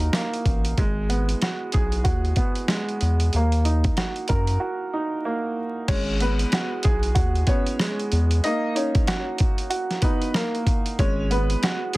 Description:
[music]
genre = hip hop, boom-bap hip-hop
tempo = 94 BPM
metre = 4/4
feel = swing 60% on 16ths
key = G# minor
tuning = A4 = 440 Hz
[part]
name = warm upright piano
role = accompaniment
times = 0.0-12.0 s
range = G#3 to A#4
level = -27 LUFS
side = right 2 dB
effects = cassette tape, high-pass filter, low-pass filter
[part]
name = round analog bass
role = bass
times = 0.0-11.6 s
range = G#1 to F#2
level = -22 LUFS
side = equal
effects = none
[part]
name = boom bap sampler-style drum kit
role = drums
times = 0.0-12.0 s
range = crash cymbal, hi-hat, kick drum, rim click, snare drum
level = -23 LUFS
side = equal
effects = none
[part]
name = clear upright piano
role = melody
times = 5.9-11.8 s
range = A#3 to D#5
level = -29 LUFS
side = left 2 dB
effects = high-pass filter, low-pass filter, digital delay
[sound]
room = little or no reverb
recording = dense, heavily limited modern master, vinyl crackle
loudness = -20 LUFS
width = side -21 dB against mid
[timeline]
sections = 0.0-5.9 A section; 5.9-12.0 B section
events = break 4.6-5.9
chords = 0.0 D#m; 0.8 G#m7; 3.3 D#m; 5.9 G#m7; 8.4 D#m; 11.0 G#m7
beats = 0.14 | 0.78 1.42 2.06 2.69 | 3.33 3.97 4.61 5.25 | 5.88 6.52 7.16 7.80 | 8.44 9.08 9.71 10.35 | 10.99 11.63

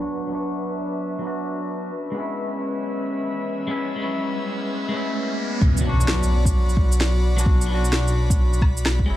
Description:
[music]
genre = future garage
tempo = 130 BPM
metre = 4/4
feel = swing 64% on 16ths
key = B dorian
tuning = A4 = 436 Hz
[part]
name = clean electric guitar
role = accompaniment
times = 0.0-9.2 s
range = F#3 to F#4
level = -29 LUFS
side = left 1 dB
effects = spring reverb, sidechain pumping, dub echo
[part]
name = airy breathy pad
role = sustained chords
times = 0.0-9.2 s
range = C#4 to B5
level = -28 LUFS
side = left 1 dB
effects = chorus, sidechain pumping
[part]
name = impact and riser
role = sound effects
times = 0.0-7.5 s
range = none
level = -30 LUFS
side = equal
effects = none
[part]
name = backwards swelling texture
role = texture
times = 0.1-5.6 s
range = B4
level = -38 LUFS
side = left 1 dB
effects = built-in reverb
[part]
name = dark detuned saw bass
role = bass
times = 5.6-9.2 s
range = F#1 to B1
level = -20 LUFS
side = equal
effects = sidechain pumping
[part]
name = electronic kick drum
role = drums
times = 5.6-9.1 s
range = none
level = -19 LUFS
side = equal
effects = overdrive
[part]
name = electronic shaker, snare drum and woodblock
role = drums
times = 5.8-9.0 s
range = none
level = -25 LUFS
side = equal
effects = low-pass filter on perc, low-pass filter on snare, low-pass filter on room
[sound]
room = light reverb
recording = vinyl crackle, low-pass filter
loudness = -20 LUFS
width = side -13 dB against mid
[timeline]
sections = 0.0-5.6 A section; 5.6-9.2 B section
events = filter sweep on analog synth pad 0.0-5.6; filter sweep 0.0-5.6; riser 3.6-5.6; impact 5.6-7.5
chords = 0.0 Bm; 1.9 C#m7; 5.6 Bm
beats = | 0.09 0.55 1.01 1.47 | 1.93 2.39 2.85 3.32 | 3.78 4.24 4.70 5.16 | 5.62 6.09 6.55 7.01 | 7.47 7.93 8.39 8.86

